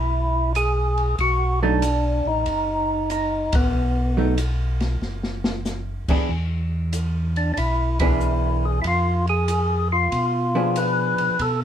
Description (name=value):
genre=soul jazz organ trio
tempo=94 BPM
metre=4/4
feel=swing 67% on 8ths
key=unclear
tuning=A4 = 440 Hz
part: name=percussive tonewheel organ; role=melody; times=0.0-11.6 s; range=B3 to Cb5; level=-22 LUFS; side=equal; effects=slow rotary speaker, overdrive
part: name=mellow tonewheel organ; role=bass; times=0.0-11.6 s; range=F#1 to Cb3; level=-23 LUFS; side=equal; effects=slow rotary speaker
part: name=open jazz drum kit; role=drums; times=0.6-11.6 s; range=crash cymbal, hi-hat, kick drum, ride cymbal, snare drum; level=-29 LUFS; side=equal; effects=none
part: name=vintage hollow-body jazz guitar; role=accompaniment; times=1.6-11.4 s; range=E3 to G#4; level=-24 LUFS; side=right 2 dB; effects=none
room=moderate studio reverb, RT60 0.5 s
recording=minimal, uncompressed stereo recording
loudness=-20 LUFS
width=side -9 dB against mid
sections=0.0-11.6 A section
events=band accent 3.4-3.7, 7.9-8.2; drum fill 5.0-5.7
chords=0.0 E; 1.2 B7; 6.3 E7; 8.8 Fdim7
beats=0.56 | 1.19 1.83 2.47 3.11 | 3.74 4.38 5.02 5.66 | 6.29 6.93 7.57 8.21 | 8.85 9.48 10.12 10.76 | 11.40